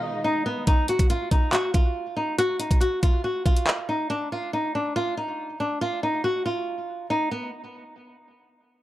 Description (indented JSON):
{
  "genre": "hip hop, drill",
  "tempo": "140 BPM",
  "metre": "4/4",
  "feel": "half-time",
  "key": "unclear",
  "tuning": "A4 = 440 Hz",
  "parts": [
    { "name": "flamenco guitar", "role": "melody", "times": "0.0-7.5 s", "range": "Cb4 to Gb4", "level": "-25 LUFS", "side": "equal", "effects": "tape echo" },
    { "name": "soft octave-layered synth lead", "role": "second line", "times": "0.0-0.6 s", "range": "Eb5", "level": "-33 LUFS", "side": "left 2 dB", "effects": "chorus, tape echo" },
    { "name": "warm symphonic string section", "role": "sustained chords", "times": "0.0-0.7 s", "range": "Cb3 to Eb4", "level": "-36 LUFS", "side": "equal", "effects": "none" },
    { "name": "drill drum kit", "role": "drums", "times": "0.7-3.8 s", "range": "handclaps, hi-hat, kick drum", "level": "-21 LUFS", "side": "equal", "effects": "none" }
  ],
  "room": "little or no reverb",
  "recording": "dry, gritty hardware recording",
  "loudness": "-22 LUFS",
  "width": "side -14 dB against mid",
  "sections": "0.7-7.5 A section; 7.5-8.8 B section",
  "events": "break 0.0-0.7",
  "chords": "0.0 Abm; 0.7 N.C."
}